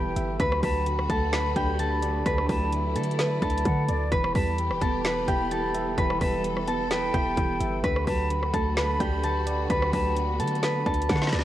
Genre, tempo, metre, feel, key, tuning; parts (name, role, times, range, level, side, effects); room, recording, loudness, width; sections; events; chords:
hip hop, trap; 129 BPM; 4/4; half-time; A4 = 441 Hz
concert harp; melody; 0.0-11.4 s; G4 to B5; -27 LUFS; equal; analog delay
breathy bright concert flute; second line; 0.0-11.4 s; D5 to B5; -38 LUFS; left 3 dB; cassette tape, analog delay
soft electric-piano-like synth keys; accompaniment; 0.0-11.4 s; D3 to E5; -32 LUFS; right 1 dB; chorus, cassette tape
warm studio string section; sustained chords; 0.0-11.4 s; D3 to A4; -37 LUFS; left 1 dB; cassette tape
warm 808-style bass; bass; 0.0-11.4 s; D1 to D3; -29 LUFS; equal
trap drum kit; drums; 0.2-11.4 s; hi-hat, kick drum, rim click, snare drum; -29 LUFS; equal; cassette tape
small room reverb; home recording on cassette; -23 LUFS; side -13 dB against mid
0.0-11.4 A section
drum fill 11.1-11.4
0.4 D; 4.1 Em; 7.8 D